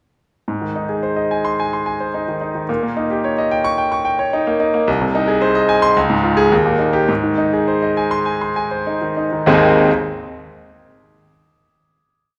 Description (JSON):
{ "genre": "classical, virtuoso piano study", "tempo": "98-111 BPM", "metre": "4/4", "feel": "rubato", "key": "Ab major", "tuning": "A4 = 441 Hz", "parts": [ { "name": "bright grand piano", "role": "solo", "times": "0.5-9.9 s", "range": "Ab1 to Db6", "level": "-17 LUFS", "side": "equal", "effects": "none" } ], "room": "moderate scoring stage reverb, RT60 2.0 s", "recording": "recorded in a church or concert hall", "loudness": "-17 LUFS", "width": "mono", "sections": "0.5-9.5 A section; 9.5-11.8 final chord", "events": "none", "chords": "0.5 Ab; 2.7 Eb7/Bb; 4.9 Ab/C; 6.0 Db; 6.5 Eb; 7.1 Ab" }